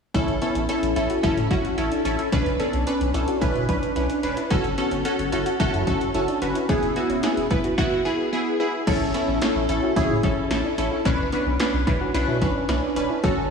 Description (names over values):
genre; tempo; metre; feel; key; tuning
synth-pop; 110 BPM; 4/4; straight; A major; A4 = 440 Hz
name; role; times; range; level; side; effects
funky polysynth comp; accompaniment; 0.1-13.5 s; B3 to B4; -23 LUFS; right 1 dB; chorus
soft round pluck; arpeggios; 0.1-13.4 s; B3 to F#4; -28 LUFS; left 4 dB; chorus, analog delay
round analog bass; bass; 0.1-13.5 s; E1 to B2; -28 LUFS; equal; none
punchy analog drum machine; drums; 0.1-13.4 s; crash cymbal, hi-hat, kick drum, snare drum; -27 LUFS; equal; none
room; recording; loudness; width
moderate lush hall reverb, RT60 2.4 s; played on a big sound system in a bare room, stone room reverb; -20 LUFS; side -5 dB against mid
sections
0.1-8.9 A section; 8.9-13.5 B section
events
none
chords
0.1 A; 2.3 Bmadd9; 4.5 F#m; 6.7 E; 8.9 A; 11.1 Bmadd9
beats
| 0.14 0.69 1.24 1.78 | 2.33 2.87 3.42 3.96 | 4.51 5.05 5.60 6.14 | 6.69 7.24 7.78 8.33 | 8.87 9.42 9.96 10.51 | 11.05 11.60 12.14 12.69 | 13.23